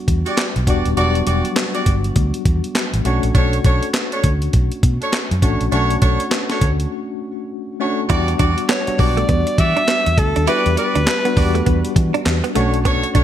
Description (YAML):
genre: R&B, new jack swing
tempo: 101 BPM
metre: 4/4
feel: swing 61% on 16ths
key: E dorian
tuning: A4 = 438 Hz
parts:
  - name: tine electric piano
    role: accompaniment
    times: 0.0-13.2 s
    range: F#3 to G4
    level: -23 LUFS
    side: left 3 dB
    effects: medium stereo tremolo
  - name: vintage muted fingered electric bass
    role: bass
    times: 0.1-13.2 s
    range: D#1 to E3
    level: -19 LUFS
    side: equal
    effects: none
  - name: breakbeat sampler-style drum kit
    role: drums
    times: 0.1-13.2 s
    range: handclaps, hi-hat, kick drum, snare drum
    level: -18 LUFS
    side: equal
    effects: gated reverb
  - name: warm horn section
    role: stabs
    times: 0.3-13.2 s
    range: D4 to D5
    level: -23 LUFS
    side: right 1 dB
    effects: none
  - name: direct-recorded clean electric guitar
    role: riff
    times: 8.1-13.2 s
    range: A3 to E4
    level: -25 LUFS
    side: right 8 dB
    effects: analog chorus
  - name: bright alto saxophone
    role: melody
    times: 8.7-11.9 s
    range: A4 to E5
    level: -20 LUFS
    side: equal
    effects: none
room: light reverb, digital ambience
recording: bright 1980s-style digital production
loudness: -15 LUFS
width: side -11 dB against mid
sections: 0.0-8.1 A section; 8.1-13.2 B section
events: break 6.9-8.1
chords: 0.0 Em9; 3.0 Bm9; 8.1 Em9; 12.6 Bm9